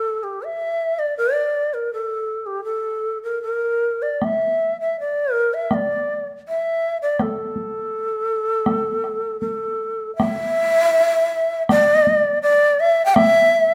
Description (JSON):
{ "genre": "japanese traditional, Japanese chamber music", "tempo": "76-84 BPM", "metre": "2/4", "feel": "rubato", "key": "A in sen", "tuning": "A4 = 440 Hz", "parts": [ { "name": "breathy bright long shakuhachi", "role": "melody", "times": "0.0-13.7 s", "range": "G4 to G5", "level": "-20 LUFS", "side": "equal", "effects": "none" }, { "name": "solo taiko drums", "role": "percussion", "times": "4.2-13.3 s", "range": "none", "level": "-25 LUFS", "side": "equal", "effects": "none" } ], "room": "moderate recital hall reverb, RT60 1.4 s", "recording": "none", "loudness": "-20 LUFS", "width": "mono", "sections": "0.0-10.2 A section; 10.2-13.7 B section", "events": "none", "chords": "none", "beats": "0.43 | 1.17 1.90 | 2.65 3.43 | 4.21 4.96 | 5.71 6.45 | 7.18 7.91 | 8.65 9.42 | 10.19 10.95 | 11.69 12.42 | 13.15" }